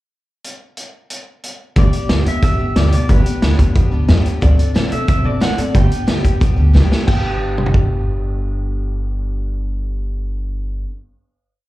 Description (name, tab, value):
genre	rockabilly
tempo	181 BPM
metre	4/4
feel	straight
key	G major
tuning	A4 = 436 Hz
part	vintage drum kit	drums	0.4-7.8 s	crash cymbal, hi-hat, kick drum, snare drum, toms	-16 LUFS	equal	none
part	electric guitar through a small old amp	melody	1.8-10.8 s	B4 to G5	-26 LUFS	right 2 dB	slapback echo, analog delay
part	picked steel-string acoustic guitar	accompaniment	1.8-10.9 s	G2 to A4	-24 LUFS	left 4 dB	slapback echo
part	upright bass	bass	1.8-10.8 s	G1 to C3	-17 LUFS	equal	none
room	little or no reverb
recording	live gig heard through the venue's PA, club reverb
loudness	-14 LUFS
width	side -17 dB against mid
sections	0.4-1.8 pickup bar; 1.8-7.1 A section; 7.1-9.7 final chord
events	drum fill 6.7-7.1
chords	0.4 N.C.; 1.8 G; 4.4 D7; 5.7 G